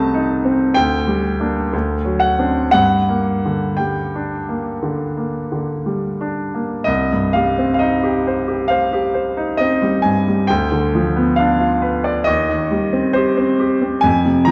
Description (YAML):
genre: classical, romantic nocturne for solo piano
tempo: 56-68 BPM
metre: 4/4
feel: rubato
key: G minor, C minor from 6.9 s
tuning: A4 = 443 Hz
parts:
  - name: bright grand piano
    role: solo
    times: 0.0-14.5 s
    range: C2 to Bb5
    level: -18 LUFS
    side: equal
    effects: none
room: wet scoring stage reverb, RT60 1.6 s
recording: dark, warm production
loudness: -18 LUFS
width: mono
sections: 0.0-6.9 A section; 6.9-14.5 B section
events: none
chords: 0.0 Adim/C; 0.8 Gm/D; 1.7 D7; 2.8 Gm; 6.9 Cm; 10.5 Bdim/D; 12.3 Cm/Eb